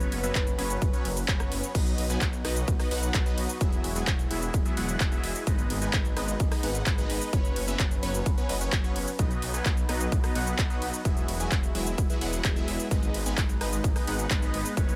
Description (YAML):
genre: EDM, festival progressive house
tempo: 129 BPM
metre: 4/4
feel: straight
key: B major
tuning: A4 = 439 Hz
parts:
  - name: bell-like FM electric piano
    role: melody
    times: 0.0-1.2 s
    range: B4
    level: -42 LUFS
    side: equal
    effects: chorus, delay
  - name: lush unison pad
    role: sustained chords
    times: 0.0-15.0 s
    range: F#3 to B4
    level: -39 LUFS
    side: equal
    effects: chorus, phaser, sidechain pumping
  - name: supersaw stab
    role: riff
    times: 0.0-15.0 s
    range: F#3 to G#5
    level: -36 LUFS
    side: equal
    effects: phaser, sidechain pumping, delay
  - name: detuned saw bass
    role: bass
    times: 0.0-15.0 s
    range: E1 to B1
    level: -35 LUFS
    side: equal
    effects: chorus, sidechain pumping
  - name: big-room dance drum kit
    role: drums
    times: 0.0-15.0 s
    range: cabasa, crash cymbal, handclaps, hi-hat, ride cymbal, rim click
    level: -36 LUFS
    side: equal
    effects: overdrive
  - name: electronic kick drum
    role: drums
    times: 0.4-14.9 s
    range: none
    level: -29 LUFS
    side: equal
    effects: overdrive
room: little or no reverb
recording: none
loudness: -27 LUFS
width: mono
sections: 0.0-1.7 A section; 1.7-15.0 A section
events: drop 0.0-1.7, 1.7-15.0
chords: 0.0 F#sus4; 1.7 B; 3.6 Eadd9; 5.5 G#m; 7.3 F#sus4; 9.2 B; 11.1 Eadd9; 12.9 G#m